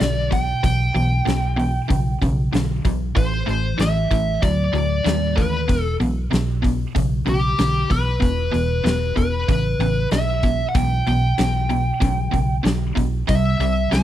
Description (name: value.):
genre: blues rock power trio and southern rock.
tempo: 95 BPM.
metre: 4/4.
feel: straight.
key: E minor.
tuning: A4 = 435 Hz.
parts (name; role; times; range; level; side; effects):
fuzz lead guitar; melody; 0.0-14.0 s; G4 to A5; -24 LUFS; equal; wah, distortion.
cranked stack guitar; riff; 0.0-14.0 s; E2 to G3; -23 LUFS; equal; overdrive.
vintage muted fingered electric bass; bass; 0.0-14.0 s; E1 to D#2; -22 LUFS; equal; none.
huge arena drum kit; drums; 0.0-14.0 s; hi-hat, kick drum, snare drum; -24 LUFS; equal; none.
room: little or no reverb.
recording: dry, close 1970s-style studio recording.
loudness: -18 LUFS.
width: side -12 dB against mid.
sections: 0.0-14.0 A section.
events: none.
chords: 0.0 Em; 3.2 Am; 5.7 Em; 13.3 C.